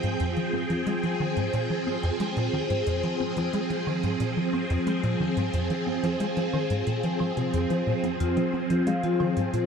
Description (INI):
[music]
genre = ambient, sequencer-driven space music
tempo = 90 BPM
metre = 4/4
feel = straight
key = F minor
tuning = A4 = 441 Hz
[part]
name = phased string machine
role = sustained chords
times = 0.0-9.7 s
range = F3 to G5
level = -26 LUFS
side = equal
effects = ensemble chorus, phaser
[part]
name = tight sequencer bass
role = riff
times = 0.0-9.7 s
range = F2 to C4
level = -28 LUFS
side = equal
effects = ensemble chorus, ping-pong delay
[part]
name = electronic hi-hat and woodblock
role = percussion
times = 0.0-9.7 s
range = none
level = -47 LUFS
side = right 6 dB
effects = ping-pong delay
[part]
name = vibraphone with soft mallets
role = arpeggios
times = 8.2-9.6 s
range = F4 to F5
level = -30 LUFS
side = left 6 dB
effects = auto-pan, ping-pong delay
[sound]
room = wet huge ambient reverb, RT60 7.2 s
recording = cassette tape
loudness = -24 LUFS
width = side -6 dB against mid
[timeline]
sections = 0.0-9.7 A section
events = none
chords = 0.0 Fmadd9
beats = | 0.20 0.87 1.53 2.20 | 2.87 3.54 4.20 4.87 | 5.54 6.20 6.87 7.54 | 8.20 8.87 9.54